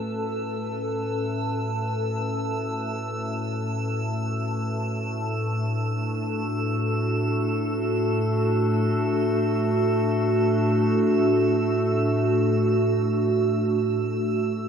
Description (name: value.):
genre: ambient.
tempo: free time.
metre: none.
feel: none.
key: unclear.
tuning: A4 = 441 Hz.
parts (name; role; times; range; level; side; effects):
warbly tape-like pad; sustained chords; 0.0-14.7 s; A2 to B4; -23 LUFS; equal; chorus, built-in reverb.
overtone-sweeping drone; drone; 0.0-14.7 s; A3 to A4; -34 LUFS; left 1 dB; chorus, built-in reverb, phaser.
drifting glass-harmonics texture; texture; 0.0-14.7 s; E6; -36 LUFS; right 3 dB; chorus, built-in reverb.
room: wet huge ambient reverb, RT60 8.1 s.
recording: dark, warm production.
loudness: -22 LUFS.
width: side -7 dB against mid.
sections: 0.0-14.7 A section.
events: fade-in on ambient pad 0.0-14.7; fade-in on synth texture 0.0-14.7; fade-out on synth drone 0.0-14.7.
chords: 0.0 A6; 5.0 D/A.